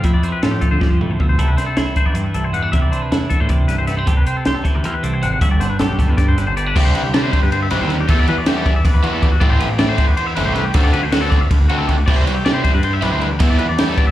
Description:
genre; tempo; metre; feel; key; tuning
math rock and midwest emo; 315 BPM (eighths); 7/8; straight; unclear; A4 = 436 Hz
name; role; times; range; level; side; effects
twelve-string electric guitar; accompaniment; 0.0-8.1 s; F2 to G4; -22 LUFS; right 2 dB; none
twangy electric guitar; arpeggios; 0.0-14.1 s; F#4 to F#5; -23 LUFS; left 4 dB; phaser, tape echo, slapback echo
growling picked electric bass; bass; 0.0-14.1 s; G1 to F3; -20 LUFS; equal; overdrive
compact cocktail drum kit; drums; 0.0-14.1 s; crash cymbal, hi-hat, kick drum, ride cymbal, snare drum, toms; -17 LUFS; equal; none
overdriven electric guitar; riff; 6.8-14.0 s; C3 to F#4; -21 LUFS; right 1 dB; slapback echo
room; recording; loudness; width
studio reverb; live gig heard through the venue's PA, club reverb; -14 LUFS; side -14 dB against mid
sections
0.0-6.8 A section; 6.8-14.1 B section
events
drum fill 0.8-1.4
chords
0.0 Fmaj9; 1.4 C69; 4.1 Am7/C; 5.4 Gmaj7; 6.8 Cmaj9; 8.1 Em11; 9.4 Am9; 10.7 D7; 12.1 Cmaj9; 13.4 Em11

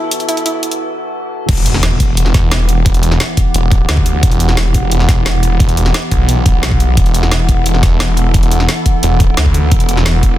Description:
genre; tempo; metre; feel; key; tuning
dark technical drum and bass; 175 BPM; 4/4; straight; E minor; A4 = 437 Hz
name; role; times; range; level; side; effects
metallic inharmonic drone; sustained chords; 0.0-10.4 s; E3 to A4; -21 LUFS; equal; chorus, built-in reverb, sidechain pumping
warbly dusty pluck; arpeggios; 0.0-0.6 s; E4; -22 LUFS; right 2 dB; chorus, sidechain pumping, dub echo
warbly tape-like pad; texture; 0.0-10.4 s; E4 to F#5; -25 LUFS; right 2 dB; chorus, built-in reverb, sidechain pumping
drum and bass drum kit; drums; 0.1-10.3 s; crash cymbal, hi-hat, snare drum; -19 LUFS; equal; overdrive, studio ambience
snarling distorted saw bass; bass; 1.5-10.4 s; E1 to D2; -13 LUFS; equal; distortion, sidechain pumping
electronic kick drum; drums; 1.5-10.3 s; none; -12 LUFS; equal; overdrive, studio ambience
impact; sound effects; 1.5-2.9 s; none; -19 LUFS; equal; none
room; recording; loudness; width
digital ambience; dense, heavily limited modern master, high-pass filter; -10 LUFS; side -14 dB against mid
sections
0.0-1.5 A section; 1.5-10.4 B section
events
build-up 0.0-1.5; filter sweep 0.0-1.5; break 0.8-1.5; drop 1.5-10.4; impact 1.5-2.9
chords
0.0 Esus2; 1.5 Emadd9

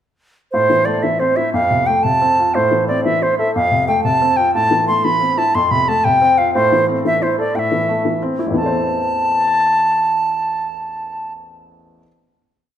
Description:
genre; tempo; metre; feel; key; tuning
celtic folk, Celtic jig; 120 BPM (dotted quarters); 6/8; straight; A minor; A4 = 441 Hz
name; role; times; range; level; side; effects
bright wooden flute; melody; 0.5-11.3 s; C5 to C6; -15 LUFS; equal; slapback echo
warm upright piano; accompaniment; 0.5-12.1 s; A1 to C5; -19 LUFS; left 1 dB; none
room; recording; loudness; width
wet recital hall reverb, RT60 1.4 s; none; -14 LUFS; side -10 dB against mid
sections
0.5-8.6 A section; 8.6-10.6 final chord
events
none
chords
0.5 Am; 1.5 F; 2.5 Am; 3.5 F; 4.5 Am; 5.5 F; 6.5 Am

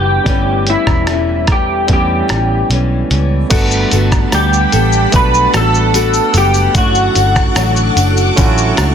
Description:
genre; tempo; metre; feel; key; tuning
indie pop, bedroom pop; 74 BPM; 4/4; straight; G lydian; A4 = 442 Hz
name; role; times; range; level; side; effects
electric guitar through a small old amp; melody; 0.0-8.3 s; E4 to B4; -15 LUFS; left 1 dB; analog chorus, digital delay
barky tine electric piano; accompaniment; 0.0-8.9 s; G3 to F#5; -20 LUFS; right 6 dB; none
nylon-string guitar; accompaniment; 0.0-8.9 s; G2 to A4; -21 LUFS; left 5 dB; wide subtle chorus, warbly pitch drift
vintage muted picked electric bass; bass; 0.0-8.9 s; E1 to E2; -15 LUFS; equal; none
lo-fi sampler-style drum kit; drums; 0.3-8.9 s; crash cymbal, hi-hat, kick drum, rim click, shaker; -15 LUFS; equal; soft clipping on snare
string machine, violins; sustained chords; 3.5-8.9 s; G3 to D6; -21 LUFS; equal; ensemble chorus
tambourine; percussion; 3.5-8.9 s; none; -31 LUFS; right 8 dB; none
room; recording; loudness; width
light reverb; dense, heavily limited modern master; -10 LUFS; side -8 dB against mid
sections
0.0-3.5 A section; 3.5-8.9 B section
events
none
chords
0.3 A7; 3.5 Gmaj9; 6.8 Dmaj7

